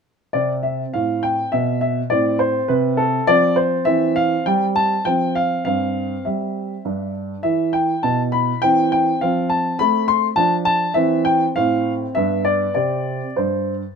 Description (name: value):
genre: classical-period piano sonatina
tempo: 102 BPM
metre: 3/4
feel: straight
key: C major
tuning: A4 = 440 Hz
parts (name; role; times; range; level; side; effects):
- warm baby grand piano; solo; 0.3-13.8 s; G2 to C6; -17 LUFS; equal; none
room: light reverb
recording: minimal, uncompressed stereo recording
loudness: -17 LUFS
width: side -6 dB against mid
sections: 0.4-14.0 A section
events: none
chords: 0.4 Am9; 2.1 Am; 3.3 F5; 3.9 C/E; 5.1 F5; 5.7 C/G; 6.8 G5; 7.4 E5; 8.6 C/E; 9.2 F; 10.4 Dm/F; 11.0 C/E; 11.6 F/A; 12.2 G; 12.8 C5